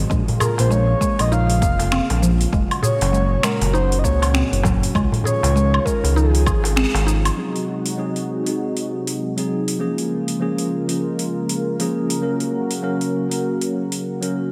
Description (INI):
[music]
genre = organic downtempo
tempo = 99 BPM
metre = 4/4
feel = swing 60% on 16ths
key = Ab mixolydian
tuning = A4 = 439 Hz
[part]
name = warm analog pad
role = sustained chords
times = 0.0-14.5 s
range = Bb2 to Bb4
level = -28 LUFS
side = equal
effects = chorus, sidechain pumping
[part]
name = smooth synth bass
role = bass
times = 0.0-7.3 s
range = F1 to Db2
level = -21 LUFS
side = equal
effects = sidechain pumping
[part]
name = mallet-like synth pluck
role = arpeggios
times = 0.1-7.2 s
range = F3 to Ab4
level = -27 LUFS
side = equal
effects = subtle chorus, cassette tape, delay
[part]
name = deep house drum kit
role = drums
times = 0.1-14.3 s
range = finger snaps, hi-hat, shaker, woodblock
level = -28 LUFS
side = equal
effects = overdrive, gated reverb
[part]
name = electronic kick drum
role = drums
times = 0.1-6.6 s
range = none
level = -25 LUFS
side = equal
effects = overdrive
[part]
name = darbuka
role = percussion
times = 0.3-7.0 s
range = none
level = -29 LUFS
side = equal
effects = none
[part]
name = breathy flute-like synth lead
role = melody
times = 0.4-7.1 s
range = Ab4 to F5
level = -27 LUFS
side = equal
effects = chorus, delay
[part]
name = tine electric piano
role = accompaniment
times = 7.4-14.5 s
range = F3 to Bb4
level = -26 LUFS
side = equal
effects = medium tremolo, sidechain pumping, delay
[sound]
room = moderate lush hall reverb, RT60 1.8 s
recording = bright 1980s-style digital production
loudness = -20 LUFS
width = mono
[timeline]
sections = 0.0-7.4 A section; 7.4-14.5 B section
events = band accent 6.8-7.1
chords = 0.1 Bbm7; 2.5 Gb; 5.0 Dbadd9; 7.4 Ab7; 9.8 Bbm7; 12.2 Gb